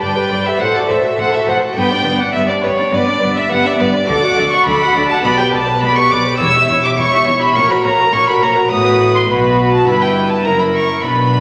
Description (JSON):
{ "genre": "classical, baroque-style concerto movement with solo episodes", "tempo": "103 BPM", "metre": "4/4", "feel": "straight", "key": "unclear", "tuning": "A4 = 438 Hz", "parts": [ { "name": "rich chamber violin section", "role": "melody", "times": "0.0-11.4 s", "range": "C#5 to E6", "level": "-22 LUFS", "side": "equal", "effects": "none" }, { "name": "warm violin", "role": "melody", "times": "0.0-11.4 s", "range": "C#5 to E6", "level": "-19 LUFS", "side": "equal", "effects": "none" }, { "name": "warm studio violin section", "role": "second line", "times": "0.0-11.4 s", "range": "A4 to F#5", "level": "-21 LUFS", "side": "equal", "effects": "none" }, { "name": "harpsichord", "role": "accompaniment", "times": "0.0-11.4 s", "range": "E2 to D5", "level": "-28 LUFS", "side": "equal", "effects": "none" }, { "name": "warm chamber viola section", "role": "accompaniment", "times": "0.0-11.4 s", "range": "B3 to B4", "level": "-21 LUFS", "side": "equal", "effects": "none" }, { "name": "rich chamber cello section", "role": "bass", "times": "0.0-11.4 s", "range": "E2 to D3", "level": "-25 LUFS", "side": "equal", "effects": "none" }, { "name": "rich chamber double bass section", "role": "bass", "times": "0.0-11.4 s", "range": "E1 to D2", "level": "-27 LUFS", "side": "equal", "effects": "none" } ], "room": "wet recital hall reverb, RT60 1.3 s", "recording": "vinyl crackle, nothing above 10.3 kHz", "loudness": "-14 LUFS", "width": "mono", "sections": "0.0-11.4 A section", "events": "none", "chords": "0.0 G; 0.6 F#dim/A; 1.8 G; 4.1 D; 5.2 G/B; 6.4 C#dim/E; 7.6 F#/A#; 8.7 B5/A; 9.9 Em/G; 10.5 F#7" }